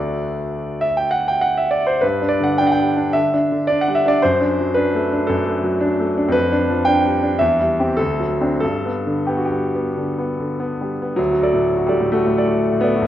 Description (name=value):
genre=classical, romantic character piece for solo piano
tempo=88-131 BPM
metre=4/4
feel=rubato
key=G major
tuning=A4 = 440 Hz
part: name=clear concert grand piano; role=solo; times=0.0-13.1 s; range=A1 to G5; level=-16 LUFS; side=equal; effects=none
room=moderate scoring stage reverb, RT60 1.5 s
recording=worn, warbling old tape, cassette tape, warbly pitch drift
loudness=-16 LUFS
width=side -12 dB against mid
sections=0.0-11.2 A section; 11.2-13.1 B section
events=none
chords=0.0 D; 2.0 G5; 4.2 D7/F#; 6.3 G7/F; 7.4 C/E; 8.0 D7; 8.6 G; 11.2 D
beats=0.23 0.83 1.43 | 2.03 2.60 3.15 3.69 | 4.23 4.76 5.29 5.81 | 6.34 6.87 7.41 7.99 | 8.62 9.30 9.97 10.60 | 11.19 11.66 12.14 12.61